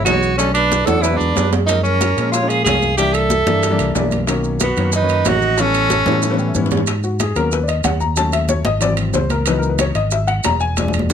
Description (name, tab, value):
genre	Afro-Cuban jazz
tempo	185 BPM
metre	4/4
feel	straight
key	unclear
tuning	A4 = 440 Hz
part	warm tenor saxophone	melody	0.0-6.6 s	B3 to A4	-18 LUFS	right 2 dB	none
part	silver concert flute	second line	0.0-6.6 s	F#4 to F#5	-24 LUFS	right 6 dB	none
part	warm upright piano	accompaniment	0.0-11.1 s	D#3 to A#5	-20 LUFS	left 5 dB	none
part	fingered electric bass	bass	0.0-11.1 s	E1 to A#2	-20 LUFS	equal	none
part	bongos	percussion	0.1-11.1 s	none	-28 LUFS	left 8 dB	none
part	congas	percussion	0.1-11.1 s	none	-26 LUFS	left 1 dB	none
part	maracas	percussion	0.1-11.1 s	none	-27 LUFS	right 7 dB	none
part	timbales	percussion	0.1-11.1 s	none	-26 LUFS	right 7 dB	none
room	light reverb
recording	close, detailed microphones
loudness	-14 LUFS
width	side -8 dB against mid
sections	0.0-6.9 A section; 6.9-11.1 B section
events	drum fill 0.9-1.7, 5.9-6.9, 10.8-11.1; upright piano fill 6.2-6.9; upright piano solo 6.9-11.1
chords	0.4 Bm7; 1.0 E9; 1.7 F#maj7; 3.0 C9; 4.3 Bmaj7; 5.6 A9; 6.9 G#m11; 8.2 D#m7b5; 8.8 G#aug7; 9.5 C#m11